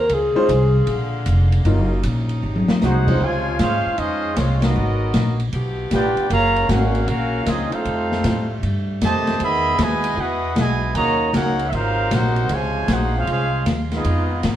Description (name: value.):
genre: jazz, big band swing.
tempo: 155 BPM.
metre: 4/4.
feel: swing 66% on 8ths.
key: Db major.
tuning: A4 = 440 Hz.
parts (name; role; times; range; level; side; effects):
dark alto saxophone; melody; 0.0-1.3 s; Ab4 to Bb4; -19 LUFS; left 2 dB; plate reverb.
bright saxophone section; sustained chords; 0.0-14.6 s; C3 to Bb4; -31 LUFS; equal; none.
upright bass; bass; 0.0-14.6 s; F1 to A2; -21 LUFS; equal; none.
open jazz drum kit; drums; 0.1-14.6 s; crash cymbal, hi-hat, kick drum, ride cymbal, snare drum, toms; -25 LUFS; left 2 dB; none.
warm grand piano; accompaniment; 0.4-3.2 s; Gb3 to C5; -22 LUFS; equal; none.
warm trumpet section; melody; 2.8-14.4 s; Ab3 to B5; -22 LUFS; right 1 dB; plate reverb.
warm trombone section; second line; 2.8-14.4 s; B2 to G4; -25 LUFS; right 2 dB; none.
room: wet club reverb, RT60 0.7 s.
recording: heard from further back in the room.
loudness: -17 LUFS.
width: side -11 dB against mid.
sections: 0.0-3.2 A section; 3.2-14.6 B section.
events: alto saxophone solo 0.0-3.2; drum fill 2.4-2.8; band accent 4.6.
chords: 0.1 Dbmaj7; 0.9 Bb7; 1.7 Ebm7; 2.4 Ab7; 3.2 Dbmaj7; 4.8 Abm9; 5.5 G9; 6.3 Gbmaj7; 7.9 F9; 9.4 Emaj7; 11.0 Ebm7; 11.7 Ab9; 12.5 Dbmaj7; 14.0 Fm7b5.